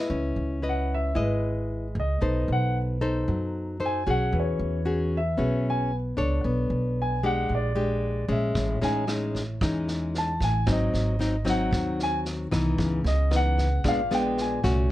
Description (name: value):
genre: bossa nova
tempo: 114 BPM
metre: 4/4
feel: straight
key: C# minor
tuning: A4 = 440 Hz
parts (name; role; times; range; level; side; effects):
- nylon-string guitar; accompaniment; 0.0-14.9 s; G#2 to D#5; -27 LUFS; left 2 dB; none
- upright bass; bass; 0.1-14.9 s; G#1 to F#2; -27 LUFS; right 1 dB; none
- warm concert grand piano; melody; 0.7-14.9 s; B4 to A5; -30 LUFS; equal; none
- vintage drum kit; drums; 8.6-14.7 s; kick drum, rim click, snare drum; -33 LUFS; right 1 dB; none
room: little or no reverb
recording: close, detailed microphones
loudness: -23 LUFS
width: side -15 dB against mid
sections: 0.1-14.9 A section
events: grand piano solo 0.1-14.9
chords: 0.1 C#m9; 2.2 B7b9; 4.3 E69; 6.4 Bm9; 7.5 A#6; 8.6 Amaj7#11; 10.7 G#7; 12.8 C#m9; 13.8 A#7b9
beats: | 0.10 0.63 1.16 1.69 | 2.22 2.75 3.27 3.80 | 4.33 4.86 5.38 5.91 | 6.44 6.97 7.50 8.03 | 8.55 9.08 9.61 10.14 | 10.67 11.20 11.73 12.26 | 12.79 13.31 13.84 14.37 | 14.90